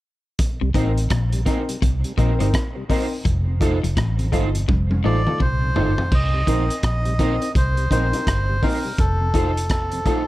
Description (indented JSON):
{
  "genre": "roots reggae",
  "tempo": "84 BPM",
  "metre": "4/4",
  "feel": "swing 62% on 16ths",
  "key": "C dorian",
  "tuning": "A4 = 440 Hz",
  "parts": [
    { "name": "crunchy breakbeat drum kit", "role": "drums", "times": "0.4-10.3 s", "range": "crash cymbal, hi-hat, kick drum, rim click, toms", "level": "-23 LUFS", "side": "equal", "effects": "none" },
    { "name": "mellow tonewheel organ", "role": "accompaniment", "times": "0.6-10.2 s", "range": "F2 to F4", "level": "-32 LUFS", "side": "left 1 dB", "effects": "chorus vibrato, slow rotary speaker" },
    { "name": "clean electric guitar", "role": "riff", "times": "0.6-5.9 s", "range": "F2 to C3", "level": "-28 LUFS", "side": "left 5 dB", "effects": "none" },
    { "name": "vintage muted fingered electric bass", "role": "bass", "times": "0.6-10.0 s", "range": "F1 to C2", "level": "-21 LUFS", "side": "equal", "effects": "none" },
    { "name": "electric guitar at the edge of break-up", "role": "accompaniment", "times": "0.7-10.2 s", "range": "Eb4 to C5", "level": "-30 LUFS", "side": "right 5 dB", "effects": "analog chorus, tape echo" },
    { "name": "bright upright piano", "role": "stabs", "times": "0.8-10.3 s", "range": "C4 to Bb4", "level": "-28 LUFS", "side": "left 4 dB", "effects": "none" },
    { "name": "melodica", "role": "melody", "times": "5.1-10.3 s", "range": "A4 to Eb5", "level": "-25 LUFS", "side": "equal", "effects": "tape echo" }
  ],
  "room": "small room ambience",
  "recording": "none",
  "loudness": "-18 LUFS",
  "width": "side -17 dB against mid",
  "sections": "0.4-6.1 A section; 6.1-10.3 B section",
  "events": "drum fill 4.7-6.1",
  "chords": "0.4 Cm7; 3.3 F7; 6.1 Cm7; 9.0 F7"
}